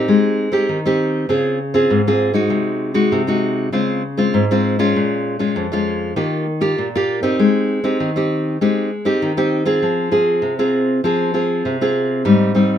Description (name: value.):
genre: samba.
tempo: 98 BPM.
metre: 4/4.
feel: straight.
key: Ab major.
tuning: A4 = 440 Hz.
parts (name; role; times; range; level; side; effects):
nylon-string guitar; solo; 0.0-12.8 s; F2 to Ab4; -15 LUFS; left 1 dB; none.
room: moderate small room reverb, RT60 0.5 s.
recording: minimal, uncompressed stereo recording.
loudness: -15 LUFS.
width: side -9 dB against mid.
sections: 0.0-9.8 A section; 9.8-12.8 B section.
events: none.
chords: 0.1 Abmaj7; 1.3 Dbmaj7; 2.5 Ab7/C; 3.7 Dbmaj7; 5.0 Bbm7; 6.2 Ebadd9; 7.4 Abmaj7; 9.8 Fm; 12.3 Abmaj7.